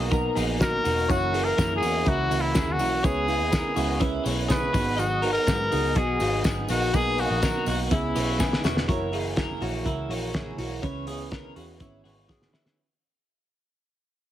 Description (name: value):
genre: jangly indie pop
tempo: 123 BPM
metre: 4/4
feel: straight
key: C# dorian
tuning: A4 = 438 Hz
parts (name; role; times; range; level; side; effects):
- clear trumpet; melody; 0.0-8.6 s; E4 to B4; -27 LUFS; left 1 dB; none
- picked plugged-in steel-string acoustic guitar; accompaniment; 0.0-12.8 s; F#2 to G#4; -34 LUFS; right 4 dB; plate reverb
- soft electric-piano-like synth keys; accompaniment; 0.0-12.8 s; B3 to C#5; -31 LUFS; right 4 dB; chorus, plate reverb
- twelve-string electric guitar; arpeggios; 0.0-12.8 s; E4 to D#5; -32 LUFS; left 4 dB; wide subtle chorus
- vintage muted picked electric bass; bass; 0.0-12.5 s; E1 to G#2; -31 LUFS; equal; none
- cloth-damped thuddy drum kit; drums; 0.1-12.8 s; hi-hat, kick drum, snare drum; -28 LUFS; left 1 dB; none
- tambourine; percussion; 0.1-8.8 s; none; -43 LUFS; left 8 dB; none
room: light reverb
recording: heavily compressed radio sound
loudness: -22 LUFS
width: side -12 dB against mid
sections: 0.0-8.9 A section; 8.9-12.8 B section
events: drum fill 8.4-8.9, 12.3-12.8; fade-out 8.9-12.8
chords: 0.0 Bmaj7; 1.1 F#7; 3.0 C#m7; 4.7 G#m7; 6.9 Bmaj7; 7.9 C#m7; 8.9 F#7; 10.8 C#m7